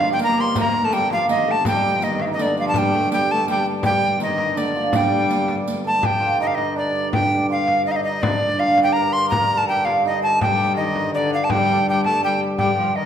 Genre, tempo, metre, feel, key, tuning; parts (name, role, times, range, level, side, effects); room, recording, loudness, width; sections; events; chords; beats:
medieval dance; 164 BPM; 3/4; straight; G minor; A4 = 439 Hz
tenor recorder; melody; 0.0-13.1 s; D5 to C6; -20 LUFS; equal
hammered dulcimer; second line; 0.0-13.1 s; A3 to C5; -24 LUFS; right 5 dB
warm viola da gamba; second line; 0.0-5.8, 10.4-13.1 s; D3 to Bb3; -25 LUFS; left 5 dB
pedal harmonium; drone; 0.0-13.1 s; G2 to D3; -30 LUFS; left 1 dB
frame drum; percussion; 0.0-12.9 s; -27 LUFS; left 2 dB
riq; percussion; 0.2-5.8 s; -30 LUFS; right 3 dB
wet recital hall reverb, RT60 1.7 s; minimal, uncompressed stereo recording; -17 LUFS; side -8 dB against mid
0.0-6.0 A section; 6.0-13.1 A section
0.19 | 0.56 0.92 1.29 | 1.65 2.02 2.38 | 2.75 3.11 3.48 | 3.84 4.21 4.57 | 4.94 5.30 5.67 | 6.03 6.40 6.76 | 7.13 7.49 7.86 | 8.22 8.59 8.95 | 9.32 9.68 10.05 | 10.41 10.78 11.14 | 11.50 11.87 12.23 | 12.60 12.96